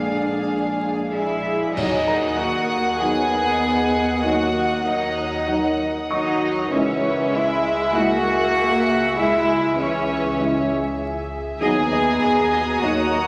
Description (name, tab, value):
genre	cinematic, suspense film score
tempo	97 BPM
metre	4/4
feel	straight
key	Eb phrygian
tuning	A4 = 440 Hz
part	warm symphonic violin section	melody	0.0-13.2 s	Eb5 to Gb5	-32 LUFS	equal	none
part	warm studio violin section	second line	0.0-13.3 s	G#4 to Ab5	-28 LUFS	equal	none
part	dark symphonic viola section	accompaniment	0.0-13.3 s	Fb3 to D4	-29 LUFS	equal	none
part	dark French horn section	sustained chords	0.0-13.0 s	Gb3 to Fb4	-29 LUFS	equal	none
part	glassy FM pad	sustained chords	0.0-13.3 s	Gb4 to Bb5	-31 LUFS	equal	ensemble chorus, built-in reverb
part	warm symphonic cello section	bass	0.0-13.3 s	A#2 to Ab4	-26 LUFS	equal	none
part	warm symphonic double bass section	bass	0.0-13.3 s	A#1 to Eb2	-36 LUFS	equal	none
part	felt-muted upright piano	texture	0.0-13.3 s	G#4 to Ab6	-36 LUFS	equal	none
part	clash cymbals and concert bass drum	percussion	1.8-3.0 s	none	-38 LUFS	equal	none
part	warm studio violin section	texture	1.8-6.4, 11.6-13.3 s	Bb5 to Gb6	-33 LUFS	equal	none
room	wet scoring stage reverb, RT60 1.9 s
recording	vinyl crackle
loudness	-21 LUFS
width	mono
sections	0.0-1.8 A section; 1.8-13.3 B section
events	band accent 1.8-2.4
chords	0.0 A#7; 1.8 Ebm; 6.7 Dbm; 11.6 Ebm